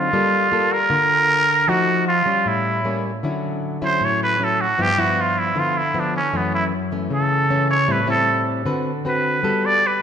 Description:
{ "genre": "bossa nova", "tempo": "155 BPM", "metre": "4/4", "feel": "straight", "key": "D major from 3.2 s", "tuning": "A4 = 442 Hz", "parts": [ { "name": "trumpet with straight mute", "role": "melody", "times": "0.0-10.0 s", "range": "B3 to D5", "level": "-18 LUFS", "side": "right 2 dB", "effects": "none" }, { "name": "nylon-string guitar", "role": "accompaniment", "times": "0.0-10.0 s", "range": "F#2 to B4", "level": "-22 LUFS", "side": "left 2 dB", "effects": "none" } ], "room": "moderate scoring stage reverb, RT60 1.9 s", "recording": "recorded in a church or concert hall", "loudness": "-17 LUFS", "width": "side -8 dB against mid", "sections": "0.0-3.2 A section; 3.2-10.0 B section", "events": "muted trumpet solo 3.2-10.0", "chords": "0.1 Gm9; 1.7 F7b9; 2.5 A7b9; 3.2 Dmaj9; 4.8 G6; 6.3 F#m7; 7.9 Am7; 8.7 D6; 9.4 Gmaj9", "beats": "| 0.13 0.52 0.91 1.29 | 1.68 2.07 2.46 2.84 | 3.23 3.62 4.01 4.39 | 4.78 5.17 5.56 5.95 | 6.33 6.72 7.11 7.50 | 7.89 8.27 8.66 9.05 | 9.44 9.82" }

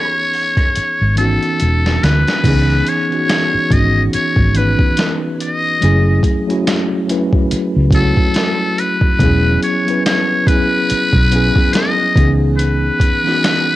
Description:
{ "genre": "R&B, neo-soul", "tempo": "71 BPM", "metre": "4/4", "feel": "swing 57% on 16ths", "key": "C# minor", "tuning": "A4 = 439 Hz", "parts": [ { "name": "trumpet with metal mute", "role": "melody", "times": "0.0-13.8 s", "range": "A4 to D#5", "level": "-17 LUFS", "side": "left 1 dB", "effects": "cassette tape" }, { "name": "mellow tine electric piano", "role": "accompaniment", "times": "0.0-13.8 s", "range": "E3 to B4", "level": "-18 LUFS", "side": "equal", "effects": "medium stereo tremolo, cassette tape" }, { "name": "boom bap sampler-style drum kit", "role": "drums", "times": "0.3-13.7 s", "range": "crash cymbal, hi-hat, kick drum, rim click, snare drum", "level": "-17 LUFS", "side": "equal", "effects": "cassette tape" }, { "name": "vintage muted fingered electric bass", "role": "bass", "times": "0.8-12.9 s", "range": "E1 to D2", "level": "-14 LUFS", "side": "equal", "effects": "transformer saturation" } ], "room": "little or no reverb", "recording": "home recording on cassette", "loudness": "-12 LUFS", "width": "side -16 dB against mid", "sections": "0.0-2.4 A section; 2.4-13.8 B section", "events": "drum fill 0.7-2.4", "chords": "0.0 C#m9; 5.8 F#m7; 9.2 E69; 12.2 C#m9", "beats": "0.74 1.59 | 2.44 3.28 4.13 4.97 | 5.82 6.66 7.51 8.35 | 9.20 10.04 10.89 11.73 | 12.58 13.42" }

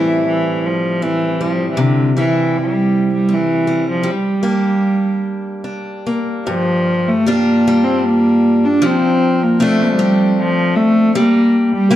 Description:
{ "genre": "celtic folk, Celtic slow air", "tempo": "78 BPM", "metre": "3/4", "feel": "rubato", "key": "G dorian", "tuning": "A4 = 440 Hz", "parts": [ { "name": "rich cello", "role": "melody", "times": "0.0-12.0 s", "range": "D3 to D4", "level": "-14 LUFS", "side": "equal", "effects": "none" }, { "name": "picked steel-string acoustic guitar", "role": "accompaniment", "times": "0.0-12.0 s", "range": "G2 to G4", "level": "-18 LUFS", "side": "left 1 dB", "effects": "none" } ], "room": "moderate recital hall reverb, RT60 1.4 s", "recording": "dark, warm production", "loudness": "-13 LUFS", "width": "side -12 dB against mid", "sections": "0.0-6.5 A section; 6.5-12.0 B section", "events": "none", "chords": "0.0 Am7; 1.8 C; 4.1 Gm; 6.5 G5; 8.8 F6; 11.2 Gm", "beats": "0.24 1.01 | 1.77 2.53 3.29 | 4.06 4.83 5.65 | 6.47 7.26 8.05 | 8.82 9.60 10.38 | 11.15 11.92" }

